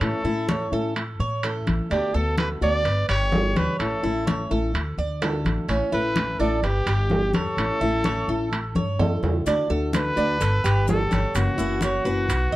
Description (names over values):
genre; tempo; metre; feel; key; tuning
latin, Cuban son and guajira; 127 BPM; 4/4; straight; D major; A4 = 445 Hz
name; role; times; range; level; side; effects
bright trumpet; melody; 0.0-12.6 s; F#4 to D5; -26 LUFS; equal; none
nylon-string guitar; accompaniment; 0.0-12.3 s; C#3 to G4; -28 LUFS; left 2 dB; none
Cuban tres; arpeggios; 0.0-12.6 s; C#4 to D#5; -28 LUFS; right 3 dB; none
upright bass; bass; 0.0-12.6 s; F#1 to A2; -26 LUFS; equal; none
congas; percussion; 0.0-12.6 s; none; -28 LUFS; left 1 dB; none
timbales; percussion; 0.0-12.5 s; none; -30 LUFS; right 3 dB; none
maracas; percussion; 9.5-12.5 s; none; -41 LUFS; left 7 dB; none
room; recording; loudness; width
light reverb; dark, warm production; -21 LUFS; side -16 dB against mid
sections
0.0-9.5 A section; 9.5-12.6 A section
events
drum fill 8.8-9.5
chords
0.0 A; 1.9 D6; 2.9 G; 3.8 A; 4.7 D; 5.7 A; 6.6 G; 7.6 A; 9.5 D; 10.4 Gadd9; 11.3 F#7